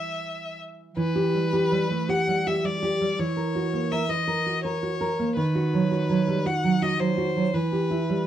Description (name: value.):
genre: romantic duo for violin and classical guitar.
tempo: 82 BPM.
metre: 3/4.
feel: rubato.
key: E minor.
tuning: A4 = 440 Hz.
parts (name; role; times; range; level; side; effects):
rich violin; melody; 0.0-8.3 s; B4 to F#5; -29 LUFS; left 3 dB; none.
nylon-string guitar; accompaniment; 0.0-8.3 s; D#3 to B4; -24 LUFS; right 2 dB; none.
room: moderate studio reverb, RT60 0.6 s.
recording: band playing live in one room.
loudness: -22 LUFS.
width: side -11 dB against mid.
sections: 1.0-8.3 A section.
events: none.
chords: 0.0 Em; 3.2 F#7/E; 5.4 B/D#; 7.5 Em.